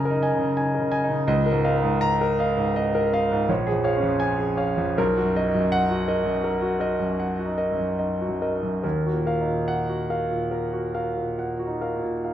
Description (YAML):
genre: classical, impressionist solo piano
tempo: 68-87 BPM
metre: 5/4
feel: rubato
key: Eb minor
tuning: A4 = 439 Hz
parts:
  - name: clear concert grand piano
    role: solo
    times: 0.0-12.3 s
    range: Bb1 to Bb6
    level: -21 LUFS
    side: equal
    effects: none
room: wet recital hall reverb, RT60 1.5 s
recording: minimal, uncompressed stereo recording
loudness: -21 LUFS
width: side -11 dB against mid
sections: 0.0-12.3 A section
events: none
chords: 0.0 Gb69; 1.3 Db69; 3.5 Bbm7; 5.0 Bmaj7; 8.8 Ebmadd9